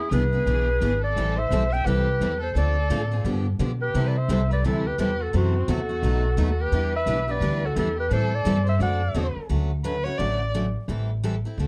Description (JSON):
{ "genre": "acoustic string swing (jazz manouche)", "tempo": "173 BPM", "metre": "4/4", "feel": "swing 60% on 8ths", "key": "unclear", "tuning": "A4 = 436 Hz", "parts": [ { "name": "breathy clarinet", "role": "melody", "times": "0.0-9.3 s", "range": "F#4 to G5", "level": "-29 LUFS", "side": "equal", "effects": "none" }, { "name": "warm violin", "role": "second line", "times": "0.0-10.5 s", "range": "C4 to E5", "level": "-35 LUFS", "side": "equal", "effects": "none" }, { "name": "upright bass", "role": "bass", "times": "0.0-11.7 s", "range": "G#1 to C3", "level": "-26 LUFS", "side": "equal", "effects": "none" }, { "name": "picked steel-string acoustic guitar", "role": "accompaniment", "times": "0.1-11.7 s", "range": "B2 to A4", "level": "-33 LUFS", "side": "equal", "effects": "none" }, { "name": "picked steel-string acoustic guitar", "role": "accompaniment", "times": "0.1-9.3 s", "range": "B2 to B4", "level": "-34 LUFS", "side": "equal", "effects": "none" } ], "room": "moderate club reverb, RT60 0.6 s", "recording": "dark, warm production", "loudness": "-24 LUFS", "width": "mono", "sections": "0.0-9.5 A section; 9.5-11.7 B section", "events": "violin solo 9.5-11.7", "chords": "0.0 E7; 1.2 Am7; 2.5 Dm7; 3.2 G7; 3.9 C69; 5.3 F#m7b5; 6.0 B7; 6.7 Em7; 8.1 Am7; 8.8 D7; 9.5 Dmaj7; 10.9 Am7" }